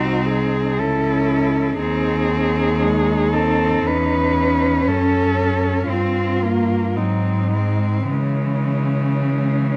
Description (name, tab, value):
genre	classical, lyrical piece for cello ensemble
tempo	49-61 BPM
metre	3/4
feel	rubato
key	C# minor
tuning	A4 = 440 Hz
part	dark cello	melody	0.0-9.8 s	C#4 to B4	-25 LUFS	equal	none
part	rich cello	second line	0.0-9.8 s	G#3 to E4	-28 LUFS	equal	none
part	rich cello	accompaniment	0.0-9.8 s	E3 to C#4	-25 LUFS	equal	none
part	rich cello	bass	0.0-9.8 s	C2 to C#3	-23 LUFS	equal	none
room	light reverb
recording	close, detailed microphones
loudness	-19 LUFS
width	mono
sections	0.0-9.8 A section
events	none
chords	0.0 Cdim; 0.8 C#m; 1.8 G#/D#; 3.9 C#m/E; 4.9 F#m; 5.9 Fsus24/G; 7.0 G#7; 8.1 C#m